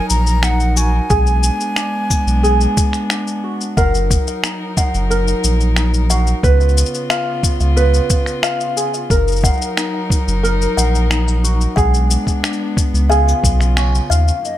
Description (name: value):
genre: folktronica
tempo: 90 BPM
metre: 4/4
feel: straight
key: F# major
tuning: A4 = 440 Hz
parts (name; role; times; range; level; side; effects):
- bright baroque flute; melody; 0.0-3.4, 14.4-14.6 s; D#5 to A#5; -23 LUFS; equal; ping-pong delay
- dark string quartet; sustained chords; 0.0-14.6 s; F#2 to A#4; -23 LUFS; equal; none
- ukulele; arpeggios; 0.0-14.6 s; C#4 to B4; -22 LUFS; right 1 dB; ping-pong delay
- warm sub bass; bass; 0.1-14.3 s; F#1 to D#2; -15 LUFS; equal; tube saturation
- electronic cabasa and finger snaps; drums; 0.1-14.6 s; none; -22 LUFS; left 3 dB; small room ambience
- electronic kick drum; drums; 1.1-13.6 s; none; -16 LUFS; equal; small room ambience
- music box; second line; 3.8-14.4 s; E#5 to F#5; -24 LUFS; left 4 dB; ping-pong delay
room: light reverb, small room reverb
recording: none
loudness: -13 LUFS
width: side -13 dB against mid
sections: 0.0-14.4 A section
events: band accent 13.8-14.1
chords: 0.0 F#6; 1.1 Bm6; 3.8 F#6; 6.4 C#7; 9.1 F#6; 11.8 Bm6; 13.1 C#7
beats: 0.44 | 1.10 1.77 2.44 3.10 | 3.77 4.44 5.10 5.77 | 6.44 7.10 7.77 8.44 | 9.10 9.77 10.44 11.10 | 11.77 12.44 13.10 13.77 | 14.44